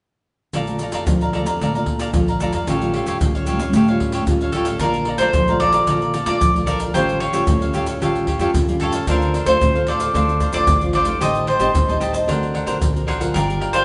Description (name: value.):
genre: samba and choro.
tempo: 112 BPM.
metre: 4/4.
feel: straight.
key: Bb major.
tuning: A4 = 440 Hz.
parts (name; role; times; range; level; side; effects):
cavaquinho; accompaniment; 0.5-13.8 s; D4 to Bb5; -27 LUFS; equal; none.
nylon-string guitar; accompaniment; 0.5-13.8 s; A2 to A#4; -26 LUFS; equal; none.
upright bass; bass; 0.5-13.8 s; G1 to Bb2; -28 LUFS; equal; none.
tube shaker, surdo and pandeiro; percussion; 0.5-13.8 s; none; -25 LUFS; equal; none.
bowl-back mandolin; melody; 4.5-13.8 s; Ab4 to Eb5; -22 LUFS; equal; none.
room: wet large studio reverb, RT60 1.4 s.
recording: band playing live in one room, nothing above 10.8 kHz.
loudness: -19 LUFS.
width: mono.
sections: 0.5-4.8 A section; 4.8-13.8 B section.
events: none.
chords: 0.5 Bbmaj7; 2.7 Aaug7; 4.8 Bbmaj7; 6.9 Aaug7; 9.1 Dm7; 11.2 Am7b5; 12.3 D7alt.